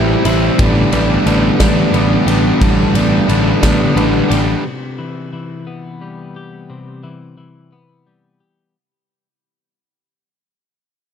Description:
post-rock; 59 BPM (dotted quarters); 6/8; straight; A4 = 440 Hz
twelve-string electric guitar; arpeggios; 0.0-8.8 s; A2 to G4; -22 LUFS; left 4 dB; analog delay
overdriven electric guitar; riff; 0.0-4.6 s; G2 to E4; -15 LUFS; right 1 dB
fuzz picked electric bass; bass; 0.0-4.5 s; A1; -16 LUFS; equal; overdrive
big rock drum kit; drums; 0.2-4.5 s; kick drum, ride cymbal, snare drum; -18 LUFS; equal
little or no reverb; dark, warm production; -11 LUFS; side -8 dB against mid
0.0-4.7 A section; 4.7-8.8 B section
fade-out 4.7-8.8
0.0 C6/A; 0.6 Gadd9/A; 4.7 Cmaj7

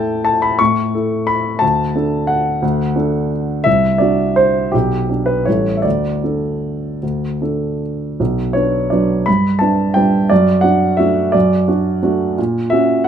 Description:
classical, piano waltz; 149-188 BPM; 3/4; rubato; D major; A4 = 441 Hz
warm grand piano; solo; 0.0-13.1 s; A1 to C#6; -14 LUFS; equal
light reverb; -14 LUFS; side -8 dB against mid
0.0-8.2 A section; 8.2-13.1 B section
0.0 A; 1.6 D; 3.7 D7/C; 4.7 G/B; 5.5 A7; 5.8 D5; 8.2 Bm; 9.3 G; 10.3 D/F#; 12.4 F#7/A#

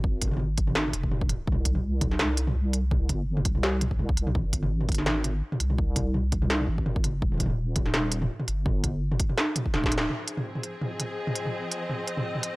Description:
half-time drum and bass; 167 BPM; 4/4; swing 55% on 16ths, half-time; F minor; A4 = 438 Hz
deep soft wobble bass; bass; 0.0-10.1 s; Eb1 to C2; -27 LUFS; equal; chorus
electronic kick drum; drums; 0.0-9.9 s; -28 LUFS; equal
industrial drum kit; drums; 0.2-12.5 s; hi-hat, snare drum, toms; -28 LUFS; equal
clear studio string section; sustained chords; 10.1-12.6 s; F3 to Eb5; -32 LUFS; left 1 dB; sidechain pumping
little or no reverb; dry, gritty hardware recording; -24 LUFS; side -22 dB against mid
0.0-10.1 A section; 10.1-12.6 B section
drum fill 9.7-10.1; band accent 10.0
0.0 Fm; 1.5 C5; 4.4 Ab; 7.2 Eb; 10.1 Fm7

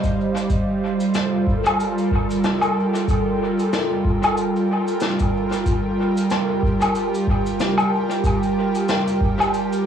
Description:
ambient dub; 93 BPM; 4/4; swing 57% on 16ths; G minor; A4 = 440 Hz
airy breathy pad; sustained chords; 0.0-9.9 s; G3 to G5; -20 LUFS; right 2 dB; chorus, cassette tape
cabasa, snare drum and woodblock; drums; 0.0-9.8 s; -24 LUFS; left 2 dB; cassette tape, dub echo
electronic kick drum; drums; 0.0-9.4 s; -23 LUFS; equal; cassette tape
light reverb, small room ambience; home recording on cassette, small room reverb; -18 LUFS; side -8 dB against mid
0.5-9.9 A section
0.0 Cm/G; 0.5 Gm7

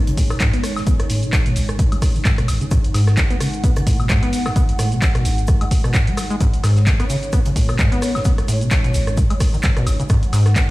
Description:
acid house; 130 BPM; 4/4; swing 56% on 16ths; G# minor; A4 = 440 Hz
dark analog pad; sustained chords; 0.0-10.7 s; G#3 to F#5; -29 LUFS; right 1 dB; chorus, sidechain pumping
deep dark ambient pad; texture; 0.0-10.7 s; D#4 to G#5; -35 LUFS; equal
deep acid bass; riff; 0.1-10.6 s; G#1 to B3; -19 LUFS; equal; wide subtle chorus
punchy analog drum machine; drums; 0.1-10.7 s; cabasa, handclaps, hi-hat, rim click, woodblock; -25 LUFS; equal
tight funk drum kit; drums; 0.1-10.7 s; hi-hat, shaker, snare drum; -37 LUFS; equal; high-pass filter on hats, high-pass filter on snare, high-pass filter on perc, high-pass filter on room
electronic kick drum; drums; 0.2-10.7 s; -18 LUFS; equal
studio reverb; played on a big sound system in a bare room, stone room reverb; -15 LUFS; side -18 dB against mid
0.0-10.7 A section
filter sweep on acid bass 0.0-10.7
0.0 G#5

